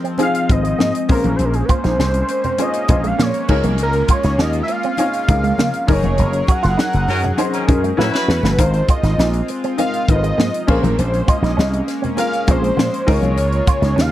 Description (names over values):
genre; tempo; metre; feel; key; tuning
polished 1980s jazz-funk pop; 100 BPM; 4/4; straight; unclear; A4 = 440 Hz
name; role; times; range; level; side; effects
warm baby grand piano; accompaniment; 0.0-14.1 s; C4 to Eb5; -23 LUFS; left 3 dB; analog chorus
chorused pulse-width pad; sustained chords; 0.0-14.1 s; Db3 to Bb4; -26 LUFS; equal; none
electric guitar with an envelope filter; riff; 0.0-14.1 s; Ab3 to Gb4; -24 LUFS; right 7 dB; analog chorus
crisp fusion drum kit; drums; 0.0-14.1 s; crash cymbal, hi-hat, kick drum, snare drum; -19 LUFS; equal; none
fat analog lead; melody; 0.2-14.1 s; Ab4 to Gb5; -21 LUFS; equal; none
congas; percussion; 0.2-14.1 s; none; -27 LUFS; left 4 dB; none
slap bass with an envelope filter; bass; 0.5-14.1 s; F1 to Db3; -18 LUFS; equal; none
mellow horn section; second line; 7.1-8.6 s; Eb3 to B4; -24 LUFS; equal; tape echo
room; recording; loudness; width
little or no reverb; dry, close 1970s-style studio recording; -14 LUFS; side -13 dB against mid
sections
0.0-14.1 A section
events
band accent 6.2-8.6; drum fill 8.0-8.6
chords
0.0 Ab69; 1.1 Bbm9; 3.5 Db6; 5.9 Gb69; 8.0 A69; 8.6 Ab69; 10.7 Bbm9; 13.1 Db6